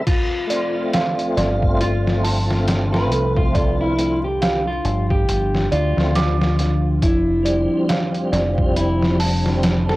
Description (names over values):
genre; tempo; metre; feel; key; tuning
trip hop; 69 BPM; 4/4; swing 58% on 16ths; unclear; A4 = 441 Hz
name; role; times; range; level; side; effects
tonewheel organ; accompaniment; 0.0-10.0 s; F3 to F4; -24 LUFS; equal; overdrive, chorus vibrato, slow rotary speaker, tremolo
deep dark ambient pad; sustained chords; 0.3-10.0 s; F3 to D4; -27 LUFS; equal; chorus, built-in reverb, vintage 12-bit sampler grit
electric guitar at the edge of break-up; melody; 0.1-10.0 s; E4 to B4; -24 LUFS; left 1 dB; cassette tape, tape echo
trip hop sampler-style drum kit; drums; 0.1-10.0 s; crash cymbal, hi-hat, kick drum, snare drum; -22 LUFS; equal; low-pass filter on hats, cassette tape, low-pass filter on snare, low-pass filter on cymbals, low-pass filter on kick, low-pass filter on room
worn celesta; arpeggios; 0.5-10.0 s; A4 to D6; -26 LUFS; right 3 dB; vintage 12-bit sampler grit, tape echo
deep dub fingered electric bass; bass; 1.4-10.0 s; F1 to D2; -21 LUFS; equal; none
room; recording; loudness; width
moderate booth ambience, RT60 0.2 s; home recording on cassette, vinyl crackle; -16 LUFS; side -18 dB against mid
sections
0.1-10.0 A section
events
none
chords
0.1 G7sus4; 7.0 Dm11/F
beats
| 0.07 0.94 1.80 2.67 | 3.54 4.41 5.28 6.15 | 7.02 7.89 8.76 9.63